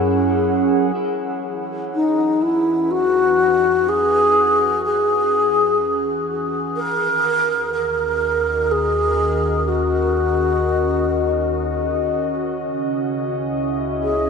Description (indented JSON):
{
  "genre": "ambient",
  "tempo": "62 BPM",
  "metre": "3/4",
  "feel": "straight",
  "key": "E lydian",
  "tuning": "A4 = 440 Hz",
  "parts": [
    { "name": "warbly tape-like pad", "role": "sustained chords", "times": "0.0-14.3 s", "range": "C#3 to F#5", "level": "-23 LUFS", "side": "right 1 dB", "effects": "chorus, built-in reverb" },
    { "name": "clean electric guitar", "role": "arpeggios", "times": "0.0-2.4 s", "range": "F#3 to D#5", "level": "-45 LUFS", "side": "equal", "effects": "vibrato effect, ping-pong delay" },
    { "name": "deep rumbling drone", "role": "bass", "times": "0.0-14.3 s", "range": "C#2 to F#2", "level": "-28 LUFS", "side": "equal", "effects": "built-in reverb" },
    { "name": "mellow wooden-headed alto flute", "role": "melody", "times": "1.9-14.3 s", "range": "D#4 to A#4", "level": "-18 LUFS", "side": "left 2 dB", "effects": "ping-pong delay" }
  ],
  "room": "wet huge ambient reverb, RT60 8.6 s",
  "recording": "nothing above 10.7 kHz",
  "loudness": "-17 LUFS",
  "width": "side -5 dB against mid",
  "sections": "1.0-14.3 A section",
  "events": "fade-in on ambient pad 1.0-14.3; fade-in on synth drone 1.0-14.3",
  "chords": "0.0 F#7; 1.0 Eadd9; 6.8 D#m7; 12.6 C#m7"
}